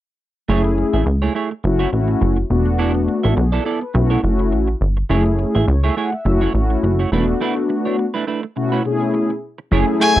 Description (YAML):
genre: funk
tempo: 104 BPM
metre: 4/4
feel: swing 56% on 16ths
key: F# minor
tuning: A4 = 439 Hz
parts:
  - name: mellow synth brass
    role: accompaniment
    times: 0.5-10.2 s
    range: B2 to F#5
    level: -19 LUFS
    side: left 2 dB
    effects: chorus
  - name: semi-hollow electric guitar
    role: riff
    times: 0.5-10.2 s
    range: A3 to E5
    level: -22 LUFS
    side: right 5 dB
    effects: analog chorus
  - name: plucky analog bass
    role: bass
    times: 0.5-10.2 s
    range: E1 to C#2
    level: -17 LUFS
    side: equal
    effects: none
  - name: string machine, full ensemble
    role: sustained chords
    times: 9.7-10.2 s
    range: F#3 to G#4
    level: -23 LUFS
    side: left 3 dB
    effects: phaser, ensemble chorus
  - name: rich fiddle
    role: melody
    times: 10.0-10.2 s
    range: G#5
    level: -13 LUFS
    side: left 2 dB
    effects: none
room: little or no reverb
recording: dry, close 1970s-style studio recording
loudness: -16 LUFS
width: side -14 dB against mid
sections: 0.5-9.7 A section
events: break 7.4-9.7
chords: 0.5 F#m9; 1.6 F#m7; 2.5 E7sus4; 3.9 B9sus4; 5.1 F#m9; 6.3 F#m7; 7.1 E7sus4; 8.6 B9sus4